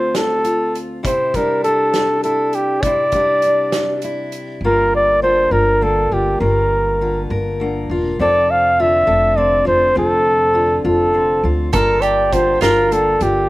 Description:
acoustic folk duo or small band; 67 BPM (dotted quarters); 6/8; straight; A4 = 440 Hz
mellow flugelhorn; melody; 0.0-13.5 s; G4 to F5; -15 LUFS; equal; slapback echo
fingerpicked steel-string acoustic guitar; accompaniment; 0.0-13.5 s; D2 to Bb4; -21 LUFS; left 1 dB; slapback echo
loose indie drum kit; drums; 0.1-4.5, 11.7-13.3 s; hi-hat, kick drum, snare drum; -24 LUFS; right 1 dB
upright bass; bass; 4.6-13.5 s; E1 to D2; -22 LUFS; equal
mandolin; arpeggios; 11.7-12.9 s; F4 to A4; -21 LUFS; right 7 dB; slapback echo
little or no reverb; -14 LUFS; side -18 dB against mid
0.0-4.6 A section; 4.6-13.5 B section
0.0 Dm7; 1.0 Cadd9; 4.6 Gm7; 8.2 Dm7/F; 11.7 Gm7
0.15 | 1.04 1.94 | 2.83 3.72 | 4.62 5.51 | 6.40 7.29 | 8.18 9.07 | 9.96 10.84 | 11.73 12.62

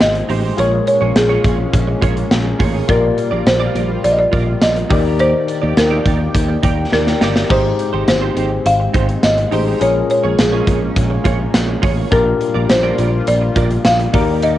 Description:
1980s-style pop; 104 BPM; 4/4; straight; A4 = 440 Hz
folk marimba with medium hard mallets; melody; 0.0-14.6 s; Ab4 to F5; -18 LUFS; equal; cassette tape
barky tine electric piano; accompaniment; 0.0-14.6 s; Ab2 to D5; -21 LUFS; left 8 dB; cassette tape
chorused pulse-width pad; sustained chords; 0.0-14.6 s; Eb3 to G5; -25 LUFS; right 2 dB; cassette tape
direct-recorded clean electric guitar; riff; 0.0-14.6 s; Eb4 to D5; -25 LUFS; right 8 dB; ensemble chorus, cassette tape
fretless electric bass; bass; 0.0-14.6 s; G1 to Eb2; -19 LUFS; equal; analog chorus
big rock drum kit; drums; 0.0-14.6 s; hi-hat, kick drum, snare drum, splash cymbal, tambourine; -18 LUFS; equal; cassette tape
light reverb; home recording on cassette, nothing above 10.5 kHz; -13 LUFS; side -13 dB against mid
0.0-14.6 A section
drum fill 6.9-7.5
0.0 Abmaj7; 0.6 Bbm7; 2.9 Gm7/Bb; 4.9 Ebmaj7; 7.5 Abmaj7; 9.8 Bbm7; 12.1 Gm7/Bb
0.00 | 0.58 1.16 1.73 2.31 | 2.89 3.46 4.04 4.62 | 5.20 5.77 6.35 6.93 | 7.50 8.08 8.66 9.23 | 9.81 10.39 10.96 11.54 | 12.12 12.70 13.27 13.85 | 14.43

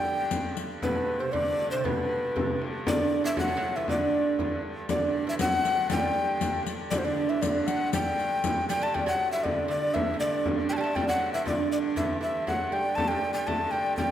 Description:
medieval dance; 118 BPM; 2/4; straight; G major; A4 = 441 Hz
breathy mellow tenor recorder; melody; 0.0-14.1 s; B4 to A5; -28 LUFS; left 1 dB
lute; second line; 0.0-14.1 s; B2 to A3; -31 LUFS; right 5 dB
clear hurdy-gurdy; drone; 0.0-14.1 s; G2 to D3; -36 LUFS; equal
frame drum; percussion; 0.1-14.1 s; -32 LUFS; left 2 dB
riq; percussion; 0.3-0.8, 4.9-8.9 s; -36 LUFS; left 6 dB
wet scoring stage reverb, RT60 1.5 s; -25 LUFS; side -10 dB against mid
0.8-8.9 A section; 8.9-14.1 B section
0.30 | 0.81 1.32 | 1.84 2.35 | 2.86 3.37 | 3.88 4.38 | 4.89 5.40 | 5.91 6.42 | 6.92 7.43 | 7.93 8.44 | 8.95 9.45 | 9.95 10.46 | 10.96 11.46 | 11.97 12.47 | 12.97 13.47 | 13.97

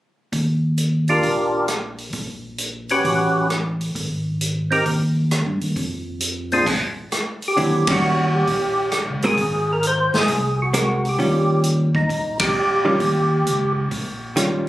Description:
soul jazz organ trio; 133 BPM; 4/4; swing 68% on 8ths; Eb major; A4 = 440 Hz
tonewheel organ; bass; 0.3-14.7 s; Ab1 to G2; -23 LUFS; equal; slow rotary speaker
swinging big-band drum kit; drums; 0.3-14.5 s; crash cymbal, hi-hat, kick drum, ride cymbal, rim click, snare drum; -25 LUFS; equal
percussive tonewheel organ; melody; 1.1-13.7 s; Bb2 to C5; -20 LUFS; equal; slow rotary speaker, overdrive, plate reverb
hollow-body jazz guitar; accompaniment; 7.6-14.7 s; D3 to Bb4; -21 LUFS; right 1 dB
moderate studio reverb, RT60 0.5 s; recorded on a phone in the room, club reverb, compression; -18 LUFS; side -15 dB against mid
0.3-7.6 A section; 7.6-14.7 B section
band accent 7.8, 12.3
0.3 Ebmaj9; 2.1 Bbm; 3.0 A13; 4.0 Abmaj7(no3); 5.8 Fm; 6.7 N.C.; 7.6 Eb7; 9.4 Ab9; 11.2 Eb9
| 0.33 0.78 1.24 1.69 | 2.14 2.59 3.05 3.50 | 3.95 4.40 4.86 5.31 | 5.76 6.21 6.67 7.12 | 7.57 8.03 8.48 8.93 | 9.38 9.84 10.29 10.74 | 11.20 11.65 12.10 12.55 | 13.01 13.46 13.91 14.37

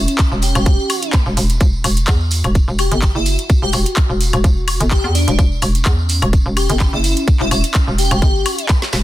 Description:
bass house; 127 BPM; 4/4; swing 54% on 16ths; E dorian; A4 = 439 Hz
airy dreamy lead; melody; 0.0-8.6 s; D4 to G4; -22 LUFS; left 1 dB; chorus, ping-pong delay
sweeping resonant pad; sustained chords; 0.0-9.0 s; E3 to F#4; -28 LUFS; left 1 dB; chorus, vintage 12-bit sampler grit, sidechain pumping
hollow knocking FM bass; bass; 0.0-9.0 s; E1 to E2; -17 LUFS; equal; overdrive, sidechain pumping
garage drum kit; drums; 0.1-9.0 s; handclaps, hi-hat, snare drum, woodblock; -22 LUFS; left 1 dB
tambourine; percussion; 0.1-9.0 s; -28 LUFS; right 4 dB
electronic kick drum; drums; 0.2-8.8 s; -13 LUFS; equal
little or no reverb; dense, heavily limited modern master; -13 LUFS; side -15 dB against mid
0.0-9.0 A section
drum fill 8.8
0.0 Emadd9
0.19 0.66 1.13 | 1.61 2.08 2.55 3.02 | 3.50 3.97 4.44 4.91 | 5.38 5.86 6.33 6.80 | 7.28 7.75 8.22 8.69

